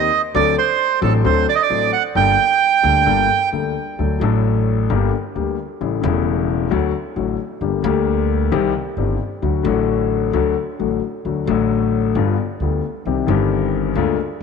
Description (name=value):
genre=tango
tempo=132 BPM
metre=4/4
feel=rubato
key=G harmonic minor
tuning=A4 = 442 Hz
part: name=bandoneon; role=melody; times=0.0-3.5 s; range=A4 to G5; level=-16 LUFS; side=right 9 dB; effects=none
part: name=warm concert grand piano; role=accompaniment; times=0.0-14.2 s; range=E1 to A4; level=-19 LUFS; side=left 10 dB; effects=none
part: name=upright bass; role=bass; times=0.0-14.4 s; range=E1 to D2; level=-22 LUFS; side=right 2 dB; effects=none
room=moderate plate reverb, RT60 3.4 s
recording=1960s-style stereo with parts hard left and right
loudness=-16 LUFS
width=side -5 dB against mid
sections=0.0-4.0 A section; 4.0-14.4 B section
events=none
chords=0.3 D7; 2.2 Gmadd9; 4.0 D; 4.9 Gm; 5.8 A7; 6.7 D; 7.6 Gm; 8.5 Cm; 9.4 D; 12.2 G7; 13.1 Cm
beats=| 0.35 0.80 1.25 1.71 | 2.16 2.61 3.07 3.53 | 3.99 4.45 4.91 5.36 | 5.81 6.26 6.71 7.16 | 7.62 8.07 8.52 8.97 | 9.42 9.88 10.34 10.79 | 11.25 11.71 12.16 12.61 | 13.06 13.52 13.96 14.41